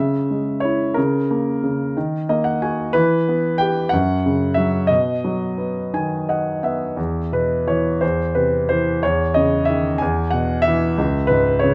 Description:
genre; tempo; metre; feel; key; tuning
classical, lyrical solo piano; 57-62 BPM (dotted quarters); 6/8; rubato; B major, E major from 7.0 s; A4 = 440 Hz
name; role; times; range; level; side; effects
warm grand piano; solo; 0.0-11.7 s; C#2 to G#5; -20 LUFS; equal; none
room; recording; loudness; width
light reverb; none; -20 LUFS; mono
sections
0.0-7.0 A section; 7.0-11.7 B section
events
grand piano fill 2.0-2.9, 5.9-7.0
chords
0.0 C#m; 1.0 A#m/C#; 2.0 D#m; 2.9 Em; 3.9 F#5; 4.9 B; 7.0 E5; 8.0 C/E; 9.0 C#madd9/E; 10.0 E5; 11.0 C#5

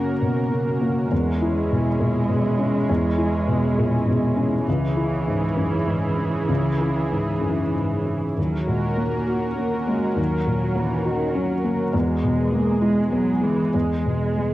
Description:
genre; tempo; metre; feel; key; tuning
neoclassical piano and strings; 100 BPM; 3/4; rubato; unclear; A4 = 440 Hz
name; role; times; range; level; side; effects
muted cello; second line; 0.0-14.5 s; D#3 to A#3; -26 LUFS; right 2 dB; cassette tape
felt-muted upright piano; accompaniment; 0.0-14.5 s; C#2 to F#4; -22 LUFS; left 1 dB; cassette tape
warm analog pad; sustained chords; 0.0-14.5 s; G#3 to A#4; -27 LUFS; right 1 dB; chorus, cassette tape
room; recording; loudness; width
moderate spring reverb, RT60 1.6 s, small room ambience; home recording on cassette; -20 LUFS; side -16 dB against mid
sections
0.0-8.4 A section; 8.4-14.5 B section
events
none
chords
0.0 F#; 1.1 E6; 4.7 C#m; 8.4 D#m7; 11.9 E

